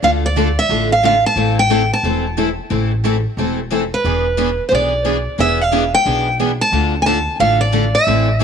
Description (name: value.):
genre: acoustic string swing (jazz manouche).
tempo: 179 BPM.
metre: 4/4.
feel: swing 62% on 8ths.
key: A minor.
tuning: A4 = 437 Hz.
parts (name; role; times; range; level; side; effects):
picked steel-string acoustic guitar; melody; 0.0-8.4 s; B4 to A5; -16 LUFS; right 1 dB; tape echo.
picked steel-string acoustic guitar; accompaniment; 0.0-8.4 s; D3 to A4; -21 LUFS; left 12 dB; none.
picked steel-string acoustic guitar; accompaniment; 0.0-8.4 s; D3 to B4; -23 LUFS; right 13 dB; none.
upright bass; bass; 0.0-8.4 s; E1 to D2; -20 LUFS; equal; none.
room: light reverb.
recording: 1960s-style stereo with parts hard left and right.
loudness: -14 LUFS.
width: side -7 dB against mid.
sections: 0.0-8.4 A section.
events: none.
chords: 0.0 Dm; 1.4 Am; 4.0 E7; 6.7 Dm.